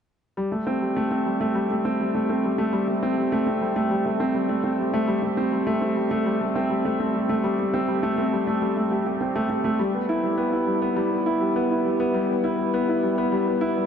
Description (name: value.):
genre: electronica.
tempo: 102 BPM.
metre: 4/4.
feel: straight.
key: A minor.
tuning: A4 = 440 Hz.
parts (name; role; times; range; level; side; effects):
warm concert grand piano; riff; 0.4-13.9 s; G3 to G4; -21 LUFS; equal; analog delay.
room: wet huge ambient reverb, RT60 9.1 s.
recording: dreamy mix soaked in reverb, nothing above 11.0 kHz.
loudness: -21 LUFS.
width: side -8 dB against mid.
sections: 0.4-13.9 A section.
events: none.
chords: none.